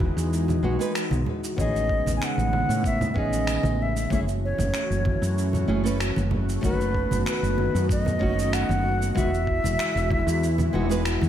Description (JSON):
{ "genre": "sunset chillout", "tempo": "95 BPM", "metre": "4/4", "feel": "straight", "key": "A lydian", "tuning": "A4 = 440 Hz", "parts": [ { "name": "airy breathy pad", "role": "sustained chords", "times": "0.0-11.3 s", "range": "C#3 to F#4", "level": "-30 LUFS", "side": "left 1 dB", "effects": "chorus" }, { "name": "woody fretless electric bass", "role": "bass", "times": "0.0-11.3 s", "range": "E1 to A2", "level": "-26 LUFS", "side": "equal", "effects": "tube saturation" }, { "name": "electronic kick drum", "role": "drums", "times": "0.0-10.2 s", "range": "none", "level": "-27 LUFS", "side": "equal", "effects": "none" }, { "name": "congas", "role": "percussion", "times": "0.0-11.3 s", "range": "none", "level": "-32 LUFS", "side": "right 3 dB", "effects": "none" }, { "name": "electronic shaker and finger snaps", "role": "drums", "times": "0.2-11.3 s", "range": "none", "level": "-34 LUFS", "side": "right 1 dB", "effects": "none" }, { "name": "nylon-string guitar", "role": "accompaniment", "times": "0.6-11.0 s", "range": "G#3 to B4", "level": "-30 LUFS", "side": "moving between left 5 dB and right 4 dB", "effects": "auto-pan, ping-pong delay" }, { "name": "wooden flute", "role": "melody", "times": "1.6-11.1 s", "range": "B4 to G#5", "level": "-29 LUFS", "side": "equal", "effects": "analog delay" } ], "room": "moderate plate reverb, RT60 1.4 s, digital ambience", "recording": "dreamy mix soaked in reverb", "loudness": "-22 LUFS", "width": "side -10 dB against mid", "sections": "0.0-11.3 A section", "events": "kick drops out 10.4-11.3", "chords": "0.0 Emaj9; 1.6 Amaj9#11; 4.1 F#m7; 6.6 B7/F#; 9.2 Emaj9" }